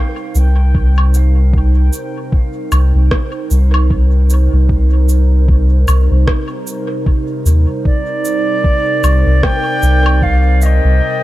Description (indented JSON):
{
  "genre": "ambient dub",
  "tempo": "76 BPM",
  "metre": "4/4",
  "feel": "swing 59% on 16ths",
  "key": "C minor",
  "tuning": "A4 = 442 Hz",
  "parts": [
    { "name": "warbly tape-like pad", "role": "sustained chords", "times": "0.0-11.2 s", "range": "C3 to C5", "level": "-21 LUFS", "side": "right 2 dB", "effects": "chorus, built-in reverb" },
    { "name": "soft dub sub bass", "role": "bass", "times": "0.3-11.0 s", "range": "C2 to Eb2", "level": "-10 LUFS", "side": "equal", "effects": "none" },
    { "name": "electronic shaker, woodblock and rim click", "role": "drums", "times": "0.4-10.8 s", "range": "none", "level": "-23 LUFS", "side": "equal", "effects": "dub echo" },
    { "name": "electronic kick drum", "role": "drums", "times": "0.7-10.4 s", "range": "none", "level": "-14 LUFS", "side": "equal", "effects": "none" },
    { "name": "silver concert flute", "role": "melody", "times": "7.9-11.2 s", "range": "D5 to G5", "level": "-19 LUFS", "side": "equal", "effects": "dub echo" }
  ],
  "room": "little or no reverb",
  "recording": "none",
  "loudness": "-10 LUFS",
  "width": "side -16 dB against mid",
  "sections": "0.0-11.2 A section",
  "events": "fade-in on ambient pad 0.0-11.2; break 11.0",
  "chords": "0.0 Cm7"
}